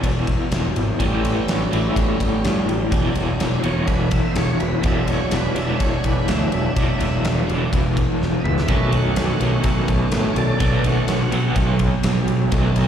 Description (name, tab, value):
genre	blues rock power trio and southern rock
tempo	125 BPM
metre	4/4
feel	straight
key	E mixolydian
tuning	A4 = 440 Hz
part	tonewheel organ	sustained chords	0.0-12.9 s	D#3 to F#5	-26 LUFS	right 3 dB	slow rotary speaker, overdrive
part	crunchy overdriven guitar	riff	0.0-12.9 s	E2 to B3	-23 LUFS	equal	tremolo, slapback echo
part	fuzz picked electric bass	bass	0.0-12.8 s	E1 to A2	-22 LUFS	equal	overdrive
part	huge arena drum kit	drums	0.0-12.9 s	kick drum, ride cymbal, snare drum, toms	-23 LUFS	equal	none
room	light reverb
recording	live gig heard through the venue's PA, recital hall reverb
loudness	-17 LUFS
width	side -9 dB against mid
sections	0.0-12.9 A section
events	tonewheel organ solo 0.0-12.9; drum fill 8.2-8.7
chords	0.0 E7; 1.0 A7; 2.9 E7; 8.7 B7